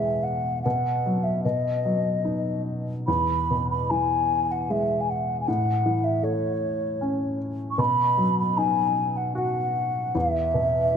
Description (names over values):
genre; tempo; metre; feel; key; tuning
celtic folk; 76 BPM; 3/4; rubato; E major; A4 = 438 Hz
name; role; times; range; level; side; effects
mellow hollow baroque flute; melody; 0.0-11.0 s; C#5 to C#6; -24 LUFS; equal; tape echo
warm upright piano; accompaniment; 0.0-11.0 s; E2 to F#4; -26 LUFS; equal; none
room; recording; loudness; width
light reverb; close, detailed microphones; -22 LUFS; side -7 dB against mid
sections
0.0-11.0 A section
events
none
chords
0.0 E; 0.7 B5; 1.4 B; 3.1 E; 5.5 A; 7.8 B; 10.1 E5